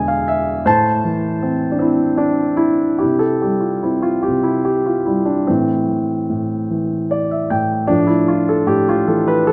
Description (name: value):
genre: classical, lyrical solo piano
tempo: 50 BPM (dotted quarters)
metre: 6/8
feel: uneven beats, rubato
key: A minor, C major from 3.0 s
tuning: A4 = 436 Hz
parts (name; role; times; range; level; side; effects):
- dark concert grand piano; solo; 0.0-9.5 s; E2 to A5; -17 LUFS; equal; none
room: moderate recital hall reverb, RT60 1.6 s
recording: none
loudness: -17 LUFS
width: mono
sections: 0.0-3.0 A section; 3.0-9.5 B section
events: grand piano fill 6.7-7.9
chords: 0.0 E7; 0.7 Am; 3.0 C; 5.5 Am; 7.9 G13/A